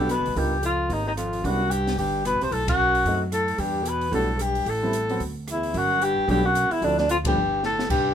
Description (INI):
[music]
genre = jazz, small-group swing and bop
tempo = 223 BPM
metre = 4/4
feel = swing 59% on 8ths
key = G major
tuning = A4 = 440 Hz
[part]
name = breathy alto saxophone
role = melody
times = 0.0-8.1 s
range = D4 to C5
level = -23 LUFS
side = left 1 dB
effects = none
[part]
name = breathy baritone saxophone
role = second line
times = 0.0-8.1 s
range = D2 to C3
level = -30 LUFS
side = right 3 dB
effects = none
[part]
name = warm grand piano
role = accompaniment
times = 0.0-7.4 s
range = F3 to A#4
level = -29 LUFS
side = equal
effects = none
[part]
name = upright bass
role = bass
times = 0.0-8.1 s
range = G1 to F#2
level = -28 LUFS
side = equal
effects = none
[part]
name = open jazz drum kit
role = drums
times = 0.1-8.0 s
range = crash cymbal, hi-hat, kick drum, ride cymbal, rim click, snare drum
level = -33 LUFS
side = equal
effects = none
[sound]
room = light reverb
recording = minimal, uncompressed stereo recording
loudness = -21 LUFS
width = side -9 dB against mid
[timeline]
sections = 0.0-7.9 A section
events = band accent 2.7, 7.2; drum fill 7.6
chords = 0.4 C#13; 1.4 Cmaj9; 2.5 B7b9; 3.6 Em7; 4.7 Am7; 5.2 Dsus2; 5.7 Gmaj7; 6.8 Dm7; 7.4 Gsus2